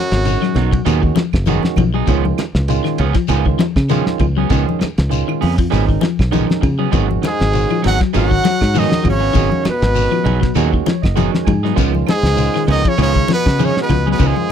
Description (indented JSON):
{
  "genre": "afrobeat",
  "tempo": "99 BPM",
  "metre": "4/4",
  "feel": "swing 55% on 16ths",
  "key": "G# dorian",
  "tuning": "A4 = 437 Hz",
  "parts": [
    { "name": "brilliant trumpet", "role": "melody", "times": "0.0-0.8, 7.3-14.5 s", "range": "F#4 to F#5", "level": "-20 LUFS", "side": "right 4 dB", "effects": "none" },
    { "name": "brilliant bass trombone", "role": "second line", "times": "0.0-0.8, 7.2-14.5 s", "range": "F#2 to F#3", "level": "-24 LUFS", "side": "left 17 dB", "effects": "none" },
    { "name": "edgy tenor saxophone", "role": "second line", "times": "0.0-0.8, 7.3-14.5 s", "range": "F#3 to F#4", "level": "-25 LUFS", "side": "right 5 dB", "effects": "none" },
    { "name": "fingered electric bass", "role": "bass", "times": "0.1-14.5 s", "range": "F#1 to C#3", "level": "-17 LUFS", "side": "equal", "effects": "none" },
    { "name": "cloth-damped thuddy drum kit", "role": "drums", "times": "0.1-14.4 s", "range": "hi-hat, kick drum, ride cymbal, snare drum", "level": "-18 LUFS", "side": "equal", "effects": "none" },
    { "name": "congas", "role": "percussion", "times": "0.1-14.5 s", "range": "none", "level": "-23 LUFS", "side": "left 6 dB", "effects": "none" },
    { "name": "barky tine electric piano", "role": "accompaniment", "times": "0.3-14.5 s", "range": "D#3 to G#5", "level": "-23 LUFS", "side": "right 18 dB", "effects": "overdrive" },
    { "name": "electric guitar at the edge of break-up", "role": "stabs", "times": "0.3-14.4 s", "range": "E#3 to G#4", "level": "-22 LUFS", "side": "right 15 dB", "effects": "none" },
    { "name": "shekere", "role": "percussion", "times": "0.3-14.4 s", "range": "none", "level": "-26 LUFS", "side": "left 9 dB", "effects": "none" },
    { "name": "clean electric guitar", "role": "arpeggios", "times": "0.4-14.4 s", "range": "C#3 to F#3", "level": "-21 LUFS", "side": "left 12 dB", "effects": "none" },
    { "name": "claves", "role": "percussion", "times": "0.4-14.5 s", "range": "none", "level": "-34 LUFS", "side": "right 26 dB", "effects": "none" }
  ],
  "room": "little or no reverb",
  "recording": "dry, close 1970s-style studio recording",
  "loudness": "-13 LUFS",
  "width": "side -8 dB against mid",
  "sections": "0.0-14.5 A section",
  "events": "tine electric piano fill 10.6-11.8",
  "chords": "0.0 G#m7; 2.1 C#7; 6.9 G#m7; 11.8 C#7"
}